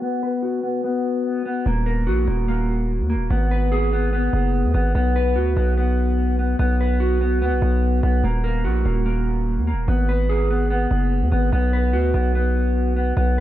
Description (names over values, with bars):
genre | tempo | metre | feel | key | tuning
hip hop, drill | 146 BPM | 4/4 | half-time | unclear | A4 = 442 Hz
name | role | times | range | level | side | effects
mellow electric guitar | arpeggios | 0.0-13.4 s | Bb3 to B4 | -22 LUFS | left 1 dB | lush chorus, tape echo
distorted 808-style bass | bass | 1.7-13.4 s | Eb1 to Eb2 | -20 LUFS | equal | distortion
room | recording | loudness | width
light reverb, digital ambience | low-pass filter | -18 LUFS | side -13 dB against mid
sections
0.0-1.7 A section; 1.7-13.4 B section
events
filter sweep 0.0-1.7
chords
0.0 B5; 1.7 Ebm; 3.3 Abm; 4.9 B5; 8.2 Ebm; 9.9 Abm; 11.5 B5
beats
| 0.02 0.43 0.84 1.25 | 1.66 2.07 2.48 2.89 | 3.31 3.72 4.13 4.54 | 4.95 5.36 5.77 6.18 | 6.59 7.00 7.42 7.83 | 8.24 8.65 9.06 9.47 | 9.88 10.29 10.70 11.11 | 11.53 11.94 12.35 12.76 | 13.17